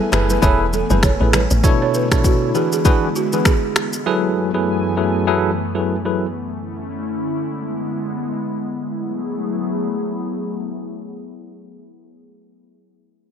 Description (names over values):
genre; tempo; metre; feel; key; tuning
afrobeats; 99 BPM; 4/4; swing 58% on 16ths; F# minor; A4 = 440 Hz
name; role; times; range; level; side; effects
bell-like tine electric piano; accompaniment; 0.0-6.3 s; B2 to C#5; -19 LUFS; left 1 dB; medium stereo tremolo, low-pass filter
airy breathy pad; sustained chords; 0.0-12.1 s; F#2 to G#5; -24 LUFS; left 1 dB; chorus, low-pass filter
balafon; riff; 0.1-3.7 s; F#4 to C#5; -24 LUFS; right 8 dB; low-pass filter, dub echo
woody log drum bass; bass; 0.1-1.6 s; E1 to A1; -18 LUFS; equal; none
deep house drum kit; drums; 0.1-4.0 s; finger snaps, kick drum, rim click, shaker; -18 LUFS; equal; none
congas; percussion; 0.3-1.5 s; none; -26 LUFS; left 1 dB; dub echo
room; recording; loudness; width
light reverb; echo-heavy mix; -17 LUFS; side -8 dB against mid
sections
0.0-8.9 A section; 8.9-11.3 B section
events
filter sweep 0.0-8.9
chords
0.0 F#m11; 1.6 Bm11; 2.5 E7; 4.1 F#m11; 6.5 Aadd11/D; 7.4 E7; 8.9 F#m11